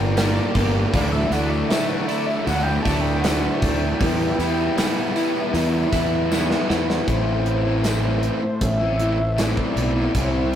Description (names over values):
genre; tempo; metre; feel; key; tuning
rock, shoegaze and dream pop; 78 BPM; 4/4; straight; unclear; A4 = 440 Hz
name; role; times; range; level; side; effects
mellow horn-like synth lead; melody; 0.0-10.6 s; C5 to A5; -28 LUFS; equal; chorus
string machine, violas; sustained chords; 0.0-10.6 s; G3 to D6; -35 LUFS; left 1 dB; none
twelve-string electric guitar; arpeggios; 0.0-7.1 s; E3 to G4; -31 LUFS; right 6 dB; none
crunchy overdriven guitar; riff; 0.0-10.6 s; G2 to E4; -26 LUFS; right 5 dB; none
overdriven electric guitar; riff; 0.0-10.6 s; G2 to E4; -25 LUFS; left 5 dB; none
fuzz fingered electric bass; bass; 0.0-10.6 s; G1 to E2; -23 LUFS; equal; overdrive
gated 80s drum kit; drums; 0.2-10.3 s; hi-hat, kick drum, snare drum; -25 LUFS; equal; none
tambourine; percussion; 0.2-9.6 s; none; -40 LUFS; left 6 dB; none
room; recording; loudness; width
moderate stone room reverb, RT60 1.0 s; rough rehearsal-room recording, tube saturation; -18 LUFS; side -10 dB against mid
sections
0.0-7.1 A section; 7.1-10.6 B section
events
drum fill 6.3-7.1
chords
0.0 Gm; 0.9 Dadd9; 4.0 Emadd9; 7.1 Am